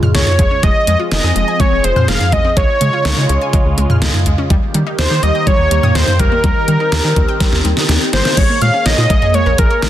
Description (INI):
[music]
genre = synth-pop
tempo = 124 BPM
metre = 4/4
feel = straight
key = Bb dorian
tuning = A4 = 440 Hz
[part]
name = phased analog pad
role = sustained chords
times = 0.0-9.9 s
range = Db3 to Db5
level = -22 LUFS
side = equal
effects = phaser, chorus
[part]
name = analog pluck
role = arpeggios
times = 0.0-9.9 s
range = G3 to Ab6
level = -24 LUFS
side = left 2 dB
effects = chorus, digital delay
[part]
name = pop drum kit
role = drums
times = 0.0-9.9 s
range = cowbell, crash cymbal, hi-hat, kick drum, snare drum, toms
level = -14 LUFS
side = equal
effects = overdrive
[part]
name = wide unison lead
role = melody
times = 0.1-9.9 s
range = Bb4 to F5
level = -16 LUFS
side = equal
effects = none
[part]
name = rubbery square bass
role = bass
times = 0.1-9.9 s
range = F1 to Eb3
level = -16 LUFS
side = equal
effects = none
[sound]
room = light reverb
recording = dense, heavily limited modern master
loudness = -11 LUFS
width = side -12 dB against mid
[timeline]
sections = 0.0-8.4 A section; 8.4-9.9 B section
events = drum fill 7.4-8.4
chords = 0.0 Db; 0.6 Fm; 2.6 Db; 4.5 Eb; 8.4 Bbm7